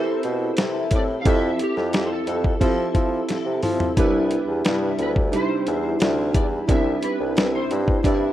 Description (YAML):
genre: indie pop, bedroom pop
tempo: 88 BPM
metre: 4/4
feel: straight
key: C major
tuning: A4 = 440 Hz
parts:
  - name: electric slide guitar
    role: melody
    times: 0.0-8.3 s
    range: G4 to F5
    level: -30 LUFS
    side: left 1 dB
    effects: ensemble chorus, tape echo
  - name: picked steel-string acoustic guitar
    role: accompaniment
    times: 0.0-8.3 s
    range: C3 to A4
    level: -28 LUFS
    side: left 6 dB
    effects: ensemble chorus, warbly pitch drift
  - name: warbly lo-fi synth keys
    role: accompaniment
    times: 0.0-8.3 s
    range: C4 to D5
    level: -25 LUFS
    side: right 4 dB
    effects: chorus, cassette tape
  - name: warm bassoon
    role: bass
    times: 0.0-8.3 s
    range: C2 to F3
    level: -25 LUFS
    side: left 1 dB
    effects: none
  - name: dusty soul sampler-style drum kit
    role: drums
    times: 0.2-8.2 s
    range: hi-hat, kick drum, snare drum, toms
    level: -22 LUFS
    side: equal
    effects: none
room: little or no reverb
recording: rough home demo mix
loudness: -19 LUFS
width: side -12 dB against mid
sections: 0.0-8.3 A section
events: electric slide guitar solo 0.0-8.3; drum fill 3.3-4.0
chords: 0.0 Fmaj7; 4.0 Cmaj7